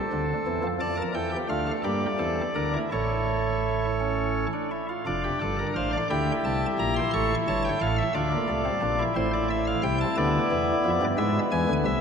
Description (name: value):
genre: classical, baroque-style 4-part fugue for pipe organ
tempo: 59 BPM (dotted quarters)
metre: 6/8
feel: straight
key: D minor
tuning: A4 = 441 Hz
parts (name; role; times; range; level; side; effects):
- chamber organ, cornet; solo; 0.0-12.0 s; F1 to C#6; -24 LUFS; equal; none
room: wet church reverb, RT60 3.7 s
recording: none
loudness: -24 LUFS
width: side -6 dB against mid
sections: 0.0-5.1 A section; 5.1-12.0 B section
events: none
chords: 0.0 Am; 0.8 Dm; 2.9 A; 5.1 Dm/F; 6.1 Em7b5; 7.1 A7; 8.2 Dm; 9.2 Am; 10.2 Bdim/D; 11.2 E7